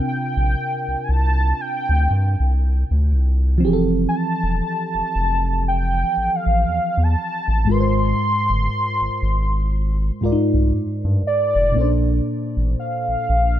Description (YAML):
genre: contemporary R&B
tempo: 59 BPM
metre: 4/4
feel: swing 58% on 16ths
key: unclear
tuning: A4 = 440 Hz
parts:
  - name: warm velvety synth lead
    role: melody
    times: 0.0-13.6 s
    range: D5 to C6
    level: -22 LUFS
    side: equal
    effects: chorus, digital delay
  - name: mellow FM electric piano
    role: accompaniment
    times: 0.0-13.6 s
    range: Ab2 to D5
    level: -23 LUFS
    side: equal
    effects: chorus, phaser
  - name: round analog bass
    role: bass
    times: 0.4-13.6 s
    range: E1 to G2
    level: -19 LUFS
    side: equal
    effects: none
room: digital ambience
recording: none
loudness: -17 LUFS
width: side -11 dB against mid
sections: 0.0-13.6 A section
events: none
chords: 0.0 C9sus4; 3.6 Fmaj7; 7.7 Ab6; 11.8 Bbmaj7